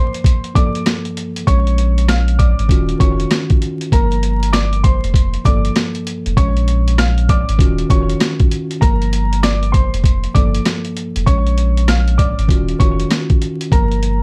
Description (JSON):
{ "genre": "hip hop, boom-bap hip-hop", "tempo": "98 BPM", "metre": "4/4", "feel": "swing 62% on 16ths", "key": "unclear", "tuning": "A4 = 441 Hz", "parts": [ { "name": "dark upright piano", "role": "melody", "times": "0.0-14.2 s", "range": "Bb4 to F6", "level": "-26 LUFS", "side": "equal", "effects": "high-pass filter, low-pass filter, slapback echo, plate reverb" }, { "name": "mellow tine electric piano", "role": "accompaniment", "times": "0.0-14.2 s", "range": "G2 to Db5", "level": "-25 LUFS", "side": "equal", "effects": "high-pass filter, low-pass filter" }, { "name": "boom bap sampler-style drum kit", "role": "drums", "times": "0.1-14.2 s", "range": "hi-hat, kick drum, rim click, snare drum", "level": "-17 LUFS", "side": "equal", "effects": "none" }, { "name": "soft dub sub bass", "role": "bass", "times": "1.5-14.2 s", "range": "Eb1 to Bb1", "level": "-19 LUFS", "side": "equal", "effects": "none" } ], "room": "little or no reverb", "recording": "vinyl crackle", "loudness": "-15 LUFS", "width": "mono", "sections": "0.0-14.2 A section", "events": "break 0.0-1.5", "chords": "0.0 Gm9; 1.5 Bbm7; 2.7 Ebm9; 3.9 Gm9; 6.4 Bbm7; 7.6 Ebm9; 8.8 Gm9; 11.3 Bbm7; 12.5 Ebm9; 13.7 Gm7", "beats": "0.25 0.86 | 1.47 2.08 2.70 3.31 | 3.92 4.53 5.15 5.76 | 6.37 6.98 7.59 8.21 | 8.82 9.43 10.04 10.66 | 11.27 11.88 12.49 13.11 | 13.72" }